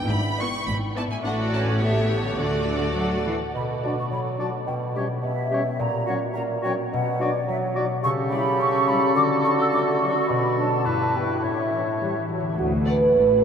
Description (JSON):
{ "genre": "cinematic, playful, whimsical film cue", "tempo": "106 BPM", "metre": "2/4", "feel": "straight", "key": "D major, B minor from 3.5 s, D major from 8.0 s", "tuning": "A4 = 440 Hz", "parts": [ { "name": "rich chamber violin section", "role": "melody", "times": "0.0-3.3, 12.9-13.0 s", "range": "C#5 to C#6", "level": "-32 LUFS", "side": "equal", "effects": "none" }, { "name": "rich chamber violin section", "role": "second line", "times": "0.0-3.3, 12.9 s", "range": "A4 to D5", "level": "-33 LUFS", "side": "equal", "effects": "none" }, { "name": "clear chamber viola section", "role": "accompaniment", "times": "0.0-3.3, 12.9 s", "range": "A3 to G4", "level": "-32 LUFS", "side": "right 2 dB", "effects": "none" }, { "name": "concert harp", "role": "arpeggios", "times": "0.0-13.4 s", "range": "G2 to D5", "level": "-29 LUFS", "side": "left 3 dB", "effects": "none" }, { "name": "clear studio cello section", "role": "bass", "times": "0.1-3.3, 12.6-13.4 s", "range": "D2 to F#3", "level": "-28 LUFS", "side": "equal", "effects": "none" }, { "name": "clear symphonic double bass section", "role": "bass", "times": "0.1-3.3, 12.6-13.4 s", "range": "G#1 to D2", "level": "-29 LUFS", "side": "equal", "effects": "none" }, { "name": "large flute ensemble", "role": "second line", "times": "3.0-12.3 s", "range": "D5 to E6", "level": "-26 LUFS", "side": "equal", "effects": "none" }, { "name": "warm bassoon", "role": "accompaniment", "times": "3.5-12.3 s", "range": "G2 to F#3", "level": "-29 LUFS", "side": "right 3 dB", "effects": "none" }, { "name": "clear clarinet", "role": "second line", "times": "3.8-12.3 s", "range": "E4 to G4", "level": "-30 LUFS", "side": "left 1 dB", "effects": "none" }, { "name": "warm oboe", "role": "second line", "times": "3.8-12.3 s", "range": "A4 to D5", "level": "-32 LUFS", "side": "equal", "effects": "none" }, { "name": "mellow French horn section", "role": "sustained chords", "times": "3.8-13.4 s", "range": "E3 to B4", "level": "-27 LUFS", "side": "right 3 dB", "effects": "none" } ], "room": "wet huge ambient reverb, RT60 8.0 s", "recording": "in a vast, echoing space", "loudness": "-21 LUFS", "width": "side -7 dB against mid", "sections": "0.0-3.5 A section; 3.5-12.6 B section", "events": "none", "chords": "0.1 E7/G#; 1.2 D/A; 2.4 D; 3.5 Bm; 4.7 C#m7b5/B; 5.8 F#/A#; 6.9 Bm; 8.0 A7/C#; 9.2 D; 10.3 Bm; 10.9 Em/G; 11.4 A; 12.6 D" }